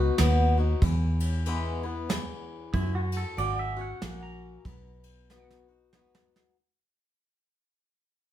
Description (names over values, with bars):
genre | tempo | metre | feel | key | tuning
honky-tonk and classic country | 94 BPM | 3/4 | swing 60% on 8ths | B major | A4 = 439 Hz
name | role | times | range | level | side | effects
picked swing-style acoustic guitar | accompaniment | 0.0-6.6 s | E2 to F#4 | -32 LUFS | left 4 dB | none
vintage muted fingered electric bass | bass | 0.0-6.1 s | G#1 to F#2 | -26 LUFS | equal | none
soft brush drum kit | drums | 0.2-6.5 s | kick drum, ride cymbal, snare drum | -31 LUFS | right 1 dB | none
pedal steel guitar | second line | 2.7-5.5 s | E4 to A#5 | -35 LUFS | right 5 dB | none
room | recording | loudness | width
moderate studio reverb, RT60 0.6 s | heard from further back in the room | -25 LUFS | side -12 dB against mid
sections
0.0-6.6 A section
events
fade-out 0.0-6.6; drum fill 5.3-6.6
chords
0.0 B; 0.8 E; 2.7 F#; 4.7 B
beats
0.19 | 0.82 1.46 2.10 | 2.74 3.37 4.01 | 4.65 5.29 5.93